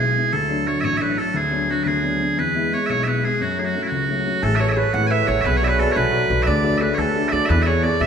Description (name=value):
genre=celtic folk, Celtic jig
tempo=117 BPM (dotted quarters)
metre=6/8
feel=straight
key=F# minor, A major from 4.4 s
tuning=A4 = 438 Hz
part: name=loud bright bagpipes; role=melody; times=0.0-8.1 s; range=E4 to G#5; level=-21 LUFS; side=right 3 dB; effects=none
part: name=dark grand piano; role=accompaniment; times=0.0-8.1 s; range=A1 to D5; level=-23 LUFS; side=left 2 dB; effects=none
part: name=cimbalom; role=second line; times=4.4-8.1 s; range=A4 to F#5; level=-24 LUFS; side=right 2 dB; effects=none
part: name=upright bass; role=bass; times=4.4-8.1 s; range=A1 to E2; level=-21 LUFS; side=equal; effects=none
room=wet scoring stage reverb, RT60 1.8 s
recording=recorded in a church or concert hall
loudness=-17 LUFS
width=side -7 dB against mid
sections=0.0-4.4 A section; 4.4-8.1 B section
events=none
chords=0.3 D; 1.4 Bm/D; 2.4 E; 3.4 F#m; 4.4 Aadd9; 5.5 Bm; 6.5 D; 7.5 E